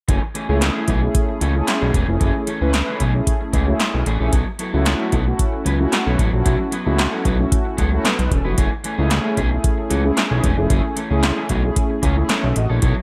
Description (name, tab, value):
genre	early-eighties boogie funk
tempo	113 BPM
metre	4/4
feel	straight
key	F# minor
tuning	A4 = 442 Hz
part	electric guitar at the edge of break-up	riff	0.1-13.0 s	E3 to B4	-29 LUFS	equal	analog chorus
part	fat analog bass	bass	0.1-12.9 s	E1 to C#2	-22 LUFS	equal	none
part	electro analog drum machine	drums	0.1-13.0 s	handclaps, hi-hat, kick drum, snare drum	-22 LUFS	equal	gated reverb
part	mellow synth brass	accompaniment	0.5-13.0 s	A3 to E5	-26 LUFS	equal	chorus
room	little or no reverb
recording	none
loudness	-19 LUFS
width	mono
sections	0.1-13.0 A section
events	none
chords	0.1 F#m9 (rootless); 4.3 B7sus4; 8.6 F#m9